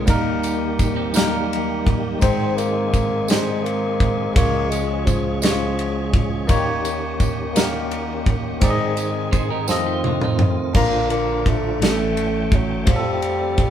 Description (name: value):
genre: slow gospel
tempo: 56 BPM (dotted quarters)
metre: 6/8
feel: straight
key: Ab major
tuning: A4 = 441 Hz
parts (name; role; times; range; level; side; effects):
- clean electric guitar; second line; 0.0-2.2, 9.3-10.7 s; C4 to C5; -30 LUFS; right 7 dB; none
- bell-like tine electric piano; accompaniment; 0.0-13.7 s; A1 to Bb5; -23 LUFS; left 1 dB; medium stereo tremolo
- tonewheel organ; sustained chords; 0.0-13.7 s; D3 to G5; -28 LUFS; right 3 dB; slow rotary speaker, chorus vibrato
- natural country drum kit; drums; 0.1-13.7 s; crash cymbal, kick drum, ride cymbal, snare drum, toms; -21 LUFS; right 1 dB; none
- tambourine; percussion; 0.1-10.0 s; none; -33 LUFS; right 6 dB; none
- mellow bassoon; melody; 2.2-6.2, 10.8-13.7 s; F3 to C4; -24 LUFS; left 2 dB; none
room: moderate studio reverb, RT60 0.7 s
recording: band playing live in one room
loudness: -18 LUFS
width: side -10 dB against mid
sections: 0.0-10.8 A section; 10.8-13.7 A section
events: drum fill 9.7-10.8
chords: 0.1 Eb; 2.2 Ab; 4.4 Db; 6.5 Eb7; 8.6 Ab; 9.7 F7; 10.8 Bb; 11.8 A7; 12.9 F